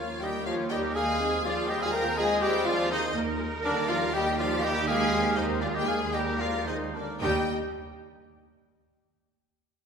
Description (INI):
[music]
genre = quick classical-period movement for symphony orchestra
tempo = 108-125 BPM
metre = 4/4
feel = rubato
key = Eb major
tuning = A4 = 438 Hz
[part]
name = rich studio violin section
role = melody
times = 0.0-7.5 s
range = D5 to Bb5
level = -35 LUFS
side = left 3 dB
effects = none
[part]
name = mellow hollow silver concert flute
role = second line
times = 0.0-7.5 s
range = Bb4 to G5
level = -36 LUFS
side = left 2 dB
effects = none
[part]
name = warm clarinet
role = second line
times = 0.0-7.5 s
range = D4 to Bb4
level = -36 LUFS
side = left 1 dB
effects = none
[part]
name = warm oboe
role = second line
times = 0.0-7.4 s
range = Bb4 to G5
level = -37 LUFS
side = right 1 dB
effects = none
[part]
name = warm studio violin section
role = second line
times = 0.0-7.5 s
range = D4 to Eb5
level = -37 LUFS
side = left 4 dB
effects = none
[part]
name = rich studio viola section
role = accompaniment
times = 0.0-7.5 s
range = G3 to F4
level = -35 LUFS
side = right 3 dB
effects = none
[part]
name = dark French horn section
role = sustained chords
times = 0.0-7.5 s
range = D3 to Bb3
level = -34 LUFS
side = left 2 dB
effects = none
[part]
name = mellow trumpet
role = stabs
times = 0.0-7.4 s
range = D4 to Bb4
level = -32 LUFS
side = equal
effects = none
[part]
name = warm studio double bass section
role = bass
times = 0.0-7.5 s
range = Eb2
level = -35 LUFS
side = right 4 dB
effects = none
[part]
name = warm studio cello section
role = bass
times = 0.2-7.5 s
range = Eb2 to Bb4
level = -36 LUFS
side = right 3 dB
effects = none
[sound]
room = wet concert hall reverb, RT60 1.9 s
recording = minimal, uncompressed stereo recording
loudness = -25 LUFS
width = side -6 dB against mid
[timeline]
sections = 0.0-7.2 A section; 7.2-9.3 B section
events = slowing down 2.2-7.2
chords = 0.0 Eb; 1.2 Ab/Eb; 3.1 Eb; 5.1 Abmaj13/Eb; 7.2 Eb5